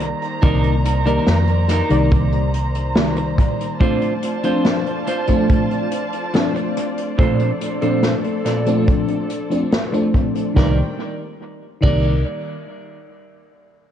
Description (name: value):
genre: vaporwave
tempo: 71 BPM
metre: 4/4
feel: straight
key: C dorian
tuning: A4 = 440 Hz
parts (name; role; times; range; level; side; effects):
- FM electric piano with soft pad layer; accompaniment; 0.0-12.2 s; Eb3 to D5; -21 LUFS; left 1 dB; ensemble chorus, analog delay
- muted studio string section; sustained chords; 0.0-11.0 s; Eb3 to Bb5; -27 LUFS; equal; none
- clean electric guitar; riff; 0.0-12.2 s; Bb2 to D5; -25 LUFS; right 2 dB; wide subtle chorus, low-pass filter, analog delay
- hollow-body short-scale fingered electric bass; bass; 0.0-3.5, 10.6-12.2 s; C2 to F2; -19 LUFS; equal; tube saturation
- unplugged drum kit; drums; 0.0-12.0 s; crash cymbal, hi-hat, snare drum; -24 LUFS; left 1 dB; analog delay
- kick drum; drums; 0.4-12.0 s; none; -18 LUFS; equal; none
room: light reverb, small room ambience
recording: echo-heavy mix, cassette tape, nothing above 10.8 kHz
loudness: -16 LUFS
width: side -10 dB against mid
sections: 0.0-10.6 A section; 10.6-13.9 B section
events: filter sweep on clean electric guitar 0.0-10.6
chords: 0.0 Cm9; 3.8 Dm7; 7.2 Bbmaj9; 10.6 Cm9